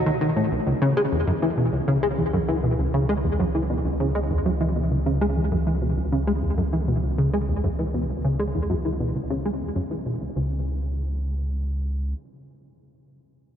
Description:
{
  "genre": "ambient, sequencer-driven space music",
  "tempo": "99 BPM",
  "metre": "4/4",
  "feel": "straight",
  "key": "C# minor",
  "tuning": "A4 = 441 Hz",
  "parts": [
    { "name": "plucky analog bass", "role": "riff", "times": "0.0-10.6 s", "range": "B1 to G#3", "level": "-22 LUFS", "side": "equal", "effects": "analog chorus, tape echo" },
    { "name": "warm sub bass", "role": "bass", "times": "0.0-12.1 s", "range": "C#2", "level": "-28 LUFS", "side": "equal", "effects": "none" }
  ],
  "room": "wet cathedral reverb, RT60 5.4 s",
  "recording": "in a vast, echoing space",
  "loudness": "-22 LUFS",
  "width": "side -9 dB against mid",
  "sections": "0.7-10.4 A section; 10.4-12.8 B section",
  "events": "filter sweep on analog synth bass 0.7-10.4",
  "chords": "0.0 B; 0.7 C#m; 10.4 N.C."
}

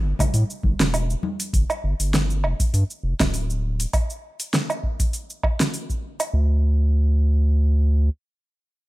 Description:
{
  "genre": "sunset chillout",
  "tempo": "100 BPM",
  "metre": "4/4",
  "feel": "swing 54% on 16ths",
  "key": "unclear",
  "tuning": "A4 = 440 Hz",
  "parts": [
    { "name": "round analog bass", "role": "bass", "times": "0.0-8.1 s", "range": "D1 to A2", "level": "-19 LUFS", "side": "equal", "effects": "none" },
    { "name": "deep house drum kit", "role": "drums", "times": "0.2-6.3 s", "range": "cabasa, hi-hat, snare drum, woodblock", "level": "-24 LUFS", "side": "right 1 dB", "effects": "overdrive, studio ambience" },
    { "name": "electronic kick drum", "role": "drums", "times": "0.2-6.0 s", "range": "none", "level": "-23 LUFS", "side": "equal", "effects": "overdrive, studio ambience" },
    { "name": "congas", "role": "percussion", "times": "0.2-1.4 s", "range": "none", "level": "-30 LUFS", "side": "left 2 dB", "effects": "none" }
  ],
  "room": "little or no reverb",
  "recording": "bright 1980s-style digital production",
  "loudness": "-20 LUFS",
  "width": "side -18 dB against mid",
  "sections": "0.0-6.3 A section; 6.3-8.7 B section",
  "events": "none",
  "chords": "none"
}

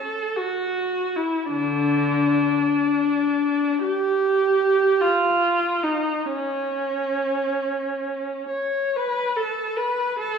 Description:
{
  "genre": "classical, free, expressive piece for unaccompanied viola",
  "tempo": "38-57 BPM (dotted quarters)",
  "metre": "6/8",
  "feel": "rubato",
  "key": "unclear",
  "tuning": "A4 = 435 Hz",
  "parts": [
    { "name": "rich viola", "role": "solo", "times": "0.0-10.4 s", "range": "D3 to C#5", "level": "-20 LUFS", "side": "equal", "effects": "none" }
  ],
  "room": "wet recital hall reverb, RT60 1.4 s",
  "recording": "heard from further back in the room",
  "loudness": "-20 LUFS",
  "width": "side -6 dB against mid",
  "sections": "0.0-10.4 A section",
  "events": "none",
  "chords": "none"
}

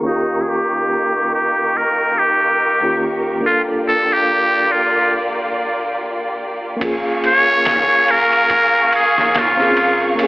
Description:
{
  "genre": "trip hop",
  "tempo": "71 BPM",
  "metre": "4/4",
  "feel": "swing 58% on 16ths",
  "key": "unclear",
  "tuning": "A4 = 440 Hz",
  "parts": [
    { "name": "reed electric piano", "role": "accompaniment", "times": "0.0-10.3 s", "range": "G2 to F5", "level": "-22 LUFS", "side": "equal", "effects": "fast tremolo, harmonic tremolo, vintage 12-bit sampler grit, tape echo" },
    { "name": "warm symphonic violin section", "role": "sustained chords", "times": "0.0-10.3 s", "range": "Bb3 to Db6", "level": "-21 LUFS", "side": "equal", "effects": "vintage 12-bit sampler grit" },
    { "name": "flickering grainy texture", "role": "texture", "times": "0.0-5.1 s", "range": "Bb4", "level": "-29 LUFS", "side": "right 2 dB", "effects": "built-in reverb" },
    { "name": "trumpet with metal mute", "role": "melody", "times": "0.1-10.0 s", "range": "Eb4 to Db5", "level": "-15 LUFS", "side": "equal", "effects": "vintage 12-bit sampler grit, tape echo" },
    { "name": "round analog bass", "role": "bass", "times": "6.8-10.3 s", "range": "Gb1 to Bb1", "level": "-40 LUFS", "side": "equal", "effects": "tube saturation" },
    { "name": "trip hop sampler-style drum kit", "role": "drums", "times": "6.8-10.3 s", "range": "kick drum, ride cymbal, snare drum", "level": "-23 LUFS", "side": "right 1 dB", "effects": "overdrive, studio ambience" }
  ],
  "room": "light reverb, digital ambience",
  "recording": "low-pass filter, telephone sound",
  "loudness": "-14 LUFS",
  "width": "side -21 dB against mid",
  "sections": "0.0-6.8 A section; 6.8-10.3 B section",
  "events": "filter sweep on violin section 0.0-6.8; filter sweep 0.0-6.8; break 5.1-6.8",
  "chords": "0.1 Eb7; 3.4 Gm7; 6.8 Bbm7"
}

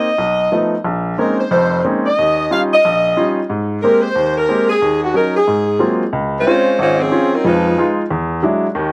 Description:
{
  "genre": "jazz",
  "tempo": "182 BPM",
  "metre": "4/4",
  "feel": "swing 63% on 8ths",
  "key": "Ab major",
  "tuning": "A4 = 440 Hz",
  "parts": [
    { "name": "dark saxophone section", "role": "melody", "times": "0.0-8.0 s", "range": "F3 to F5", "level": "-17 LUFS", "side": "equal", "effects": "slapback echo" },
    { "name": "clear baby grand piano", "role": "accompaniment", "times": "0.0-8.9 s", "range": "F1 to G4", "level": "-19 LUFS", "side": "equal", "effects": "slapback echo" }
  ],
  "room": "light reverb",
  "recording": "recorded outdoors, with no room sound",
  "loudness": "-16 LUFS",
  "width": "mono",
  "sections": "0.0-6.1 A section; 6.1-8.9 B section",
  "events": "none",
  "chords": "0.2 B7#11; 0.8 Bbm11; 2.2 Eb9; 3.5 Abmaj9; 4.8 Ebm7; 5.5 Ab13; 6.1 Dbmaj7; 7.5 Fm7b5; 8.1 E9"
}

